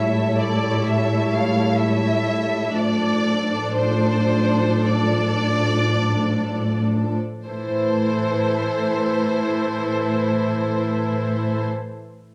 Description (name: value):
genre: classical, slow romantic movement for string orchestra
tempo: free time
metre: none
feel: none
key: A minor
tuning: A4 = 440 Hz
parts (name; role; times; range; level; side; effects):
- rich studio violin section; melody; 0.0-11.7 s; C5 to F5; -27 LUFS; equal; none
- rich studio violin section; second line; 0.0-11.7 s; A4 to D5; -30 LUFS; equal; none
- rich studio viola section; accompaniment; 0.0-11.7 s; E3 to E4; -28 LUFS; equal; none
- dark studio cello section; bass; 0.0-11.7 s; A2; -24 LUFS; equal; none
room: moderate recital hall reverb, RT60 1.3 s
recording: close, detailed microphones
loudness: -21 LUFS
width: mono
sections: 0.0-7.5 A section; 7.5-12.3 B section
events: slowing down 0.0-7.5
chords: 0.0 A7; 2.7 Dm/A; 7.5 Am